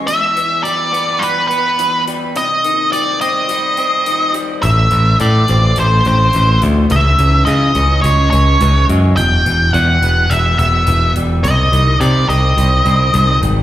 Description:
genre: quiet-loud alternative rock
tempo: 106 BPM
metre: 4/4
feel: straight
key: unclear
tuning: A4 = 440 Hz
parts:
  - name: electric guitar through a small old amp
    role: arpeggios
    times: 0.0-13.6 s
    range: E2 to C#4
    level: -21 LUFS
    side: left 1 dB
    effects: lush chorus, slapback echo
  - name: octave-fuzz lead guitar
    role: melody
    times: 0.1-13.4 s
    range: B4 to G5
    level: -14 LUFS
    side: equal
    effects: distortion, slapback echo, analog delay
  - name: hi-hat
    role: drums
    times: 0.1-13.6 s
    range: none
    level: -32 LUFS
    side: left 3 dB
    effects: none
  - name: modern bright picked electric bass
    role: bass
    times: 4.6-13.6 s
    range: E1 to C#3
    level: -12 LUFS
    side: equal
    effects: none
room: studio reverb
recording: live gig heard through the venue's PA, recital hall reverb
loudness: -11 LUFS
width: side -13 dB against mid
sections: 0.0-13.6 A section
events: none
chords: 0.1 Em; 2.4 Cm; 4.6 Am; 6.9 C#m; 9.2 Em; 11.4 Cm

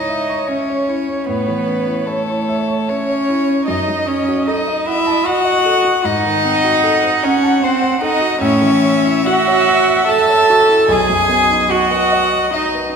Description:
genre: classical, slow romantic movement for piano quartet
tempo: 75 BPM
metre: 3/4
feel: rubato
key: unclear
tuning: A4 = 440 Hz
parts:
  - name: rich violin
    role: melody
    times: 0.0-12.9 s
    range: A4 to A5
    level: -20 LUFS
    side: left 8 dB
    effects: none
  - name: clear cello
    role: second line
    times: 0.0-12.9 s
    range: A3 to A4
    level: -15 LUFS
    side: right 3 dB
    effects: none
  - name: dark viola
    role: accompaniment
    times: 0.0-13.0 s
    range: C#5 to F#5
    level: -22 LUFS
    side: right 2 dB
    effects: none
  - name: warm concert grand piano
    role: accompaniment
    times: 0.0-13.0 s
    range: B1 to C#6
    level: -22 LUFS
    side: left 1 dB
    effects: none
room: wet scoring stage reverb, RT60 1.6 s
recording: minimal, uncompressed stereo recording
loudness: -13 LUFS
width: side -6 dB against mid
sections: 0.0-13.0 A section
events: none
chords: 0.0 C#m; 1.3 A; 3.7 D#dim/F#; 6.0 G#7b9; 8.4 F#m7/A; 10.9 B

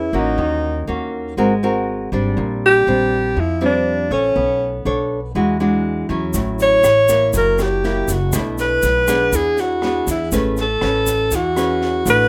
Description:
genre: bossa nova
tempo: 121 BPM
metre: 4/4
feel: straight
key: A major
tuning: A4 = 436 Hz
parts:
  - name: breathy alto saxophone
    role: melody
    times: 0.0-12.3 s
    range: C#4 to C#5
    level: -19 LUFS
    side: equal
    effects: none
  - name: nylon-string guitar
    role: accompaniment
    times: 0.0-12.3 s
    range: A2 to C#5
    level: -23 LUFS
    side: equal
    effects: none
  - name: upright bass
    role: bass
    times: 0.0-12.3 s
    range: F#1 to F2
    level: -27 LUFS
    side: equal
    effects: none
  - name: open jazz drum kit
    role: drums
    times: 6.3-12.1 s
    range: kick drum, rim click, snare drum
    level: -32 LUFS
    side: equal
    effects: none
  - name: egg shaker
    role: percussion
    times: 6.3-12.3 s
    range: none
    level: -30 LUFS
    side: equal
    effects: none
room: light reverb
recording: rough home demo mix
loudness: -18 LUFS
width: mono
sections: 0.0-12.3 A section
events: none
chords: 0.4 D#m7; 1.4 G#9; 2.4 Bb69; 4.4 Bm9; 5.3 E9; 6.3 A6; 7.3 F#7b9; 8.3 Bm7; 9.3 E7; 10.3 Amaj9

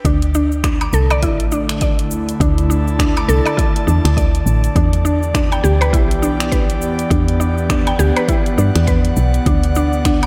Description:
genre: organic downtempo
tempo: 102 BPM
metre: 4/4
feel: swing 59% on 16ths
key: unclear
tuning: A4 = 440 Hz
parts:
  - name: mallet-like synth pluck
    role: arpeggios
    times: 0.0-10.3 s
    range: D4 to D6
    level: -23 LUFS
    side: equal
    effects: chorus, analog delay
  - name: woody FM bass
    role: bass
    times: 0.0-10.3 s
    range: A1 to G2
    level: -19 LUFS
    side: equal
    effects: none
  - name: electronic kick drum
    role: drums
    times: 0.0-10.2 s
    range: none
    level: -21 LUFS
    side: equal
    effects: none
  - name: airy breathy pad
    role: sustained chords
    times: 0.1-10.3 s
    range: D3 to A5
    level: -24 LUFS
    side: equal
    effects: chorus, sidechain pumping
  - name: deep house drum kit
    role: drums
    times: 0.1-10.3 s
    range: cabasa, finger snaps, hi-hat, woodblock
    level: -28 LUFS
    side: equal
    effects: none
room: moderate lush hall reverb, RT60 1.9 s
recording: dreamy mix soaked in reverb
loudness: -16 LUFS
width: mono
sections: 0.1-10.3 A section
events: none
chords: 0.1 Dsus2; 4.8 Em7; 9.5 D5

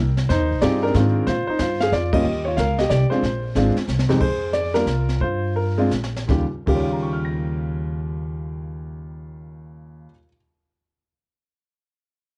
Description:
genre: jazz piano trio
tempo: 156-184 BPM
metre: 3/4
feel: swing 64% on 8ths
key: Eb major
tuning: A4 = 440 Hz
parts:
  - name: warm grand piano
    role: melody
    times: 0.0-10.3 s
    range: Eb2 to Bb6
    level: -24 LUFS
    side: equal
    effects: none
  - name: upright bass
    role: bass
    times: 0.0-10.1 s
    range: Ab1 to Bb2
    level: -26 LUFS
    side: equal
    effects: none
  - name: jazz brush drum kit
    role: drums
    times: 0.2-6.8 s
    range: brushed snare drum, crash cymbal, hi-hat, kick drum, snare drum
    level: -30 LUFS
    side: equal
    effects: cassette tape
room: light reverb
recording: home recording on cassette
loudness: -21 LUFS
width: mono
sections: 0.0-4.2 A section; 4.2-6.3 B section; 6.3-8.6 C section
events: band accent 2.1; drum fill 3.9-4.2, 5.9-6.3; slowing down 4.2-6.3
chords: 0.3 Fm7; 1.3 Bb5; 2.2 Eb9; 2.9 C5; 3.2 Bb7sus2; 4.2 Fm; 4.9 C7sus4; 5.2 Gm7; 5.9 N.C.; 6.3 Eb9

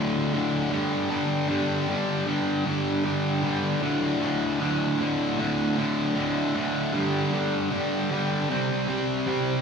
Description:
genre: rock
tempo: 77 BPM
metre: 4/4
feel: straight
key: unclear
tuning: A4 = 439 Hz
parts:
  - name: sludgy distorted guitar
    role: solo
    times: 0.0-9.6 s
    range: D2 to C4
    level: -23 LUFS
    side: equal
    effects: overdrive, slapback echo, analog delay
room: wet lush hall reverb, RT60 2.6 s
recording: big arena sound, studio reverb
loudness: -23 LUFS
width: side -6 dB against mid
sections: 0.0-9.6 A section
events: none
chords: 0.0 D5; 0.7 G5; 3.8 D5; 6.9 G5; 8.5 C5

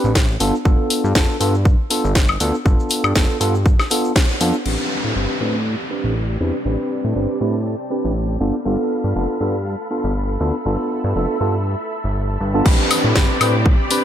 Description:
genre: filtered disco house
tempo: 120 BPM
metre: 4/4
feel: swing 55% on 16ths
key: A minor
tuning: A4 = 441 Hz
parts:
  - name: tine electric piano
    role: accompaniment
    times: 0.0-14.0 s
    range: B3 to B4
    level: -22 LUFS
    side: equal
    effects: phaser, sidechain pumping, low-pass filter
  - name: fat analog bass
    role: bass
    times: 0.0-13.8 s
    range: F1 to A2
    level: -20 LUFS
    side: equal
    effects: sidechain pumping, low-pass filter
  - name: egg shaker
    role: percussion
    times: 0.0-12.6 s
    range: none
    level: -39 LUFS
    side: right 2 dB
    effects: none
  - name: electronic kick drum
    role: drums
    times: 0.2-4.3, 12.7-13.8 s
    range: none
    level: -15 LUFS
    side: equal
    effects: none
  - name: house drum kit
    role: drums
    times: 0.2-4.8, 12.7-14.0 s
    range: crash cymbal, hi-hat, snare drum, woodblock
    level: -21 LUFS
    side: left 2 dB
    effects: sidechain pumping on hats, sidechain pumping on perc, sidechain pumping on cymbals
  - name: string machine, full ensemble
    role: sustained chords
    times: 4.7-14.0 s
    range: C4 to B5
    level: -27 LUFS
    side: equal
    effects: ensemble chorus, sidechain pumping, low-pass filter
  - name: downlifter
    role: sound effects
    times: 4.7-8.7, 12.7-14.0 s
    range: none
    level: -26 LUFS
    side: equal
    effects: none
room: light reverb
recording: none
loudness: -16 LUFS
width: side -10 dB against mid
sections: 0.0-4.7 A section; 4.7-12.7 B section; 12.7-14.0 C section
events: band accent 4.2; filter sweep 4.7-12.7; drop 12.7-14.0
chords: 0.4 G9; 4.7 Am11; 8.4 G9; 12.7 Am11

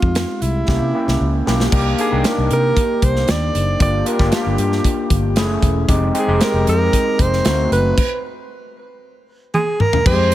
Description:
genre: polished 1980s jazz-funk pop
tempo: 115 BPM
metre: 4/4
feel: straight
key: unclear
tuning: A4 = 442 Hz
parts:
  - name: breathy alto saxophone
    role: melody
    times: 0.0-10.3 s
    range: E4 to D5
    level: -21 LUFS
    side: right 2 dB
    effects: none
  - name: overdriven tine electric piano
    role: accompaniment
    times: 0.0-10.3 s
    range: G3 to Ab4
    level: -20 LUFS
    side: left 1 dB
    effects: analog chorus
  - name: vintage muted fingered electric bass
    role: bass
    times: 0.0-10.3 s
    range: Fb1 to C3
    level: -19 LUFS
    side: equal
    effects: none
  - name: modern studio drum kit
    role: drums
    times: 0.0-10.3 s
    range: crash cymbal, hi-hat, kick drum, snare drum, toms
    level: -19 LUFS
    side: equal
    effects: none
room: light reverb, small room ambience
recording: none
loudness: -14 LUFS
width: side -14 dB against mid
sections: 0.0-1.7 A section; 1.7-10.1 B section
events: drum fill 0.7-1.7, 9.5-10.1; stop 8.0-10.1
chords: 0.0 Fm9; 0.7 C7b9; 1.7 Cm7; 3.8 Gm7; 5.4 Gbm9; 5.9 Fm9; 7.5 D7b9; 8.0 N.C.

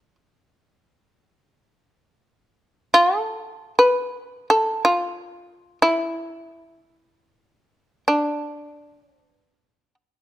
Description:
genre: japanese traditional, Japanese chamber music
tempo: free time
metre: none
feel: none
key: unclear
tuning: A4 = 441 Hz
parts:
  - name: shamisen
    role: solo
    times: 0.0-9.9 s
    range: D4 to B4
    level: -17 LUFS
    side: equal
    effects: none
room: light reverb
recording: close, detailed microphones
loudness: -19 LUFS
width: side -14 dB against mid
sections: 0.0-10.2 A section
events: none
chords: none

